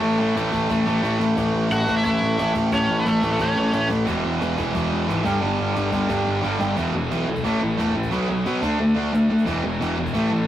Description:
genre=punk rock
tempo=178 BPM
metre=4/4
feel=straight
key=unclear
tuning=A4 = 445 Hz
part: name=distorted electric guitar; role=riff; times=0.0-10.5 s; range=E2 to D4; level=-25 LUFS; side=right 4 dB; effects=overdrive
part: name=heavy high-gain guitar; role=riff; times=0.0-1.2, 4.1-10.5 s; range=E2 to D4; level=-29 LUFS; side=right 1 dB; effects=distortion
part: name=sludgy distorted guitar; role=riff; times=0.0-10.5 s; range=E2 to D4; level=-23 LUFS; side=left 3 dB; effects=overdrive
part: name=fuzz picked electric bass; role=bass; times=0.0-10.5 s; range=E1 to B2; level=-26 LUFS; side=equal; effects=overdrive
part: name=cajon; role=drums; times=0.4-10.2 s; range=none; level=-38 LUFS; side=equal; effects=none
part: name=cranked stack guitar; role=melody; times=1.7-3.9 s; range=A3 to F#5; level=-24 LUFS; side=equal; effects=overdrive
room=moderate stone room reverb, RT60 1.2 s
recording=rough rehearsal-room recording, warm saturation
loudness=-19 LUFS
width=side -12 dB against mid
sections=0.0-1.4 A section; 1.4-6.8 B section; 6.8-10.5 C section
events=drum fill 0.7-1.4, 6.4-6.8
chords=0.0 A5; 4.1 E; 5.2 G5; 6.8 E5; 7.4 A5; 8.1 B5; 8.6 D5; 9.5 E5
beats=| 0.02 0.36 0.70 1.03 | 1.37 1.71 2.04 2.38 | 2.72 3.06 3.39 3.73 | 4.07 4.41 4.74 5.08 | 5.42 5.76 6.09 6.43 | 6.77 7.11 7.45 7.78 | 8.12 8.46 8.80 9.14 | 9.47 9.81 10.15

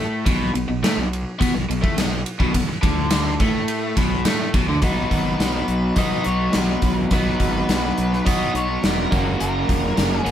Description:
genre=classic rock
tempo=105 BPM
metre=4/4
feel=straight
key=B major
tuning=A4 = 440 Hz
part: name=overdriven electric guitar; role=riff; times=0.0-10.3 s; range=F#2 to F#4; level=-22 LUFS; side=equal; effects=none
part: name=fuzz fingered electric bass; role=bass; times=0.0-10.3 s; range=E1 to B2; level=-25 LUFS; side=equal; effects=overdrive
part: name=gated 80s drum kit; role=drums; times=0.3-10.3 s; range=hi-hat, kick drum, ride cymbal, snare drum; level=-22 LUFS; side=equal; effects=none
part: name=octave-fuzz lead guitar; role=melody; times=4.8-10.3 s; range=A#4 to D#5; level=-28 LUFS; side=left 1 dB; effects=distortion
room=moderate studio reverb, RT60 0.6 s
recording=band playing live in one room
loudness=-18 LUFS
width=side -10 dB against mid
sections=0.0-4.8 A section; 4.8-10.3 B section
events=none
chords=0.0 B5; 4.8 B; 9.1 F#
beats=| 0.26 0.83 1.40 1.97 | 2.54 3.11 3.68 4.25 | 4.82 5.39 5.96 6.53 | 7.11 7.68 8.25 8.82 | 9.39 9.97

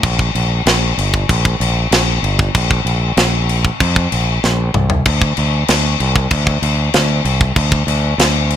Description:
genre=heavy metal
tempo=96 BPM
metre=4/4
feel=straight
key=unclear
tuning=A4 = 441 Hz
part: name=growling fingered electric bass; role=bass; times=0.0-8.6 s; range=G1 to F2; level=-16 LUFS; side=right 1 dB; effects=overdrive
part: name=tight metal drum kit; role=drums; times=0.0-8.6 s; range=crash cymbal, kick drum, snare drum, toms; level=-15 LUFS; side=left 1 dB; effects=none
room=little or no reverb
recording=none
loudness=-12 LUFS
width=side -10 dB against mid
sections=0.0-8.6 A section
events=drum fill 4.4-5.1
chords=none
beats=| 0.03 0.66 1.29 1.92 | 2.54 3.17 3.80 4.43 | 5.06 5.68 6.31 6.94 | 7.57 8.19

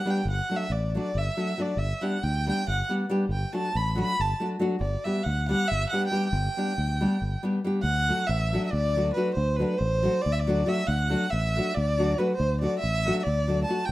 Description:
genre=balkan folk, Balkan wedding band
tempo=277 BPM (eighths)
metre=7/8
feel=straight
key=unclear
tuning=A4 = 440 Hz
part: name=warm violin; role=melody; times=0.0-13.9 s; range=B4 to B5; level=-28 LUFS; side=right 1 dB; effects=plate reverb
part: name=nylon-string guitar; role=accompaniment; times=0.1-13.8 s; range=F#3 to G4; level=-28 LUFS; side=left 1 dB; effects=plate reverb
part: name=fingered electric bass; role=bass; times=0.3-13.9 s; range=G1 to D2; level=-27 LUFS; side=equal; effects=none
room=moderate studio reverb, RT60 0.6 s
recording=rough home demo mix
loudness=-24 LUFS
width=side -16 dB against mid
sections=0.0-7.8 A section; 7.8-13.9 B section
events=none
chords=0.3 D/G; 1.8 G; 3.3 D/G; 4.8 G; 7.8 D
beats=0.04 | 0.26 0.47 0.69 0.91 1.13 1.34 1.56 | 1.78 2.00 2.21 2.43 2.65 2.86 3.08 | 3.30 3.52 3.73 3.95 4.17 4.38 4.60 | 4.82 5.03 5.25 5.46 5.68 5.90 6.12 | 6.33 6.55 6.76 6.98 7.20 7.41 7.63 | 7.84 8.06 8.28 8.49 8.71 8.93 9.14 | 9.36 9.57 9.79 10.01 10.22 10.44 10.65 | 10.87 11.08 11.30 11.52 11.73 11.95 12.16 | 12.38 12.59 12.81 13.02 13.24 13.45 13.67 | 13.88

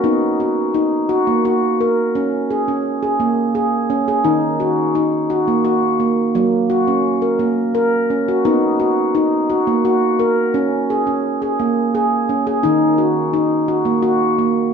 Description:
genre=world meditative, meditative tuned percussion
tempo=86 BPM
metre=3/4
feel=straight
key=unclear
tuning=A4 = 440 Hz
part: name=handpan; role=solo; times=0.0-14.7 s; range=D#3 to A#4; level=-15 LUFS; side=equal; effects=none
room=moderate scoring stage reverb, RT60 1.7 s, studio reverb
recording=none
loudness=-15 LUFS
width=side -6 dB against mid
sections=0.0-14.7 A section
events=none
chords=0.0 B; 2.2 C#5; 4.3 D#m; 6.4 F#; 8.5 B; 10.5 C#5; 12.6 D#m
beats=| 0.04 0.75 1.45 | 2.15 2.86 3.56 | 4.26 4.96 5.66 | 6.36 7.06 7.75 | 8.45 9.15 9.85 | 10.55 11.24 11.94 | 12.64 13.34 14.04

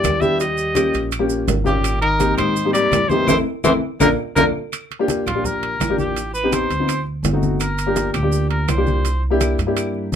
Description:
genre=Afro-Cuban jazz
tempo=166 BPM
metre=4/4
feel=straight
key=unclear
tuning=A4 = 440 Hz
part: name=clear trumpet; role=melody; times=0.0-9.2 s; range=F4 to E5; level=-22 LUFS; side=equal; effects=none
part: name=growling tenor saxophone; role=second line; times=0.0-4.4 s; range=Bb2 to G3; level=-22 LUFS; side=left 2 dB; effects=none
part: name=warm baby grand piano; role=accompaniment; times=0.0-10.1 s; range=A3 to G4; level=-21 LUFS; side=left 2 dB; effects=none
part: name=upright bass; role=bass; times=0.0-10.2 s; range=G1 to A2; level=-23 LUFS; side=right 1 dB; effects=none
part: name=claves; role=percussion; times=0.0-9.9 s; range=none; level=-32 LUFS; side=left 2 dB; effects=none
part: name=congas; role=percussion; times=0.0-10.2 s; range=none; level=-26 LUFS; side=left 3 dB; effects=none
part: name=maracas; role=percussion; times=0.0-10.2 s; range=none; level=-32 LUFS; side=right 8 dB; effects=none
part: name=timbales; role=percussion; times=0.0-9.9 s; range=none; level=-26 LUFS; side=right 9 dB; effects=none
room=moderate club reverb, RT60 0.5 s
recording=minimal, uncompressed stereo recording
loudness=-16 LUFS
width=side -8 dB against mid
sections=0.0-4.7 A section; 4.7-10.2 B section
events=band accent 3.3-4.7; trumpet solo 4.7-10.2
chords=0.4 Eb9; 1.8 Abmaj9; 3.3 Am; 4.0 Bb; 4.7 Gm9; 6.2 Am7b5; 6.9 D7b9; 7.6 Gm7; 9.1 C7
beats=0.04 | 0.40 0.76 1.12 1.48 | 1.84 2.20 2.56 2.92 | 3.28 3.64 4.00 4.36 | 4.72 5.08 5.45 5.81 | 6.17 6.53 6.89 7.25 | 7.61 7.97 8.33 8.69 | 9.05 9.41 9.77 10.13

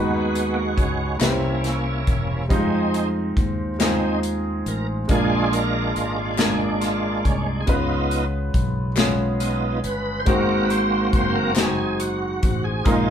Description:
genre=slow gospel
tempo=46 BPM (dotted quarters)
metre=6/8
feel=straight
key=unclear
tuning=A4 = 441 Hz
part: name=warm concert grand piano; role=accompaniment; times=0.0-13.1 s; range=Ab2 to C5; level=-23 LUFS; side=equal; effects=none
part: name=bright tonewheel organ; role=sustained chords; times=0.0-13.1 s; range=Ab3 to C5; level=-25 LUFS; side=right 2 dB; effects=fast rotary speaker, overdrive, chorus vibrato
part: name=fingered electric bass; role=bass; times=0.0-13.1 s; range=E1 to F2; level=-27 LUFS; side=equal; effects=none
part: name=natural country drum kit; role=drums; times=0.4-13.1 s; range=hi-hat, kick drum, snare drum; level=-23 LUFS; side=left 1 dB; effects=none
part: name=group handclap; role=percussion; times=1.2-12.0 s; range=none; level=-32 LUFS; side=left 6 dB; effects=none
room=moderate studio reverb, RT60 0.8 s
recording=band playing live in one room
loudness=-19 LUFS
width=side -9 dB against mid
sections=0.0-13.1 A section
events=tonewheel organ solo 0.0-13.1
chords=0.0 Abm7/Eb; 1.2 C7b9; 2.5 Fm7; 5.1 Bb7; 7.7 Db7; 10.3 Ab7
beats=1.21 | 2.50 3.80 | 5.09 6.39 | 7.68 8.97 | 10.27 11.56 | 12.86

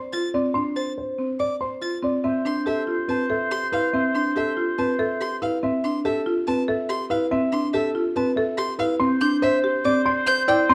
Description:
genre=classical, minimalist pattern music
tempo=142 BPM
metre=4/4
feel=straight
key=D dorian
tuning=A4 = 438 Hz
part: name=dark baby grand piano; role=melody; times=0.0-10.7 s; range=A4 to C6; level=-28 LUFS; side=equal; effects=none
part: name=buzzing marimba with medium hard mallets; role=arpeggios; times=0.0-10.7 s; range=C4 to D5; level=-26 LUFS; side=equal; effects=none
part: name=rich violin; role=arpeggios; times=0.1-10.6 s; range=E5 to A6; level=-31 LUFS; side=equal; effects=none
part: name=warm oboe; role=second line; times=2.2-5.4, 9.0-10.7 s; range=C5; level=-29 LUFS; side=equal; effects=none
room=moderate large studio reverb, RT60 0.9 s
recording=dark, warm production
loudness=-23 LUFS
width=mono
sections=0.0-2.2 A section; 2.2-10.7 B section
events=none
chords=0.0 Dm; 2.2 Dm11; 9.0 Csus2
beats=0.13 | 0.56 0.98 1.40 1.82 | 2.25 2.67 3.09 3.51 | 3.94 4.36 4.78 5.20 | 5.63 6.05 6.47 6.89 | 7.32 7.74 8.16 8.58 | 9.01 9.43 9.85 10.27 | 10.70

